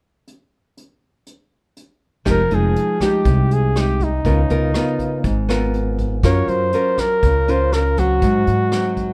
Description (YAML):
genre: bossa nova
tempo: 121 BPM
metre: 4/4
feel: straight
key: F minor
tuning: A4 = 440 Hz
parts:
  - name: vintage brush drum kit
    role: drums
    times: 0.3-9.1 s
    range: hi-hat, kick drum, rim click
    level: -27 LUFS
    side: equal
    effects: none
  - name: warm flugelhorn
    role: melody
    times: 2.3-9.1 s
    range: Eb4 to Db5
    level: -22 LUFS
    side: equal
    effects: none
  - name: nylon-string guitar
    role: accompaniment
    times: 2.3-9.1 s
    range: Ab2 to Bb4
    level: -23 LUFS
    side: equal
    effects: none
  - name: upright bass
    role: bass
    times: 2.3-8.7 s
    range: F1 to Ab2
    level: -22 LUFS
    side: equal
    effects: none
room: little or no reverb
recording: dark, warm production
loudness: -18 LUFS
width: mono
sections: 0.3-2.3 A section; 2.3-9.1 B section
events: none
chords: 0.3 N.C.; 2.3 Fm9; 4.2 Db13; 6.2 Gbmaj7; 8.2 Ab